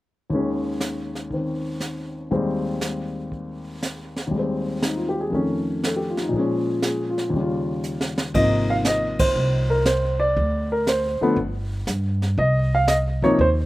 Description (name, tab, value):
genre	jazz piano trio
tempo	119 BPM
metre	4/4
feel	swing 69% on 8ths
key	Ab major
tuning	A4 = 440 Hz
part	warm baby grand piano	melody	0.3-13.5 s	Eb2 to F5	-22 LUFS	equal	slapback echo
part	jazz brush drum kit	drums	0.3-13.7 s	brushed snare drum, hi-hat, kick drum, ride cymbal, snare drum	-27 LUFS	right 1 dB	none
part	upright bass	bass	8.3-13.7 s	G1 to G2	-23 LUFS	equal	none
room	little or no reverb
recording	recorded outdoors, with no room sound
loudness	-20 LUFS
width	side -17 dB against mid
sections	0.3-8.3 A section; 8.3-13.7 B section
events	drum fill 7.8-8.3; band accent 9.1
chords	0.3 Eb7sus4; 2.3 Abmaj7/Eb; 5.3 F7b13; 6.3 Bbm7; 7.3 Eb9; 8.3 Abadd9; 10.4 D7(no3); 11.4 N.C.; 12.4 Cm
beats	| 0.31 0.81 1.31 1.81 | 2.32 2.82 3.32 3.82 | 4.33 4.83 5.33 5.83 | 6.34 6.84 7.34 7.84 | 8.35 8.85 9.36 9.86 | 10.36 10.87 11.37 11.87 | 12.38 12.88 13.38